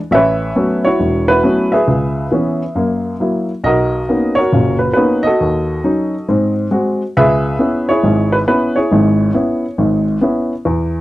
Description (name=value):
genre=solo jazz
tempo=137 BPM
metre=4/4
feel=swing 65% on 8ths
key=C# minor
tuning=A4 = 442 Hz
part: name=warm baby grand piano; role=solo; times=0.1-11.0 s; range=E1 to E5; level=-12 LUFS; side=equal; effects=none
room=little or no reverb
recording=dry, close 1970s-style studio recording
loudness=-12 LUFS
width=side -16 dB against mid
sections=0.0-10.7 A section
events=none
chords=0.1 A69; 1.9 C#m7; 2.8 F#7; 3.6 Bmaj9; 5.4 D#m7b5; 6.3 G#7; 7.2 C#m7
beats=| 0.12 0.56 1.00 1.44 | 1.88 2.32 2.76 3.20 | 3.64 4.08 4.52 4.96 | 5.39 5.83 6.27 6.71 | 7.15 7.59 8.03 8.47 | 8.91 9.35 9.79 10.23 | 10.66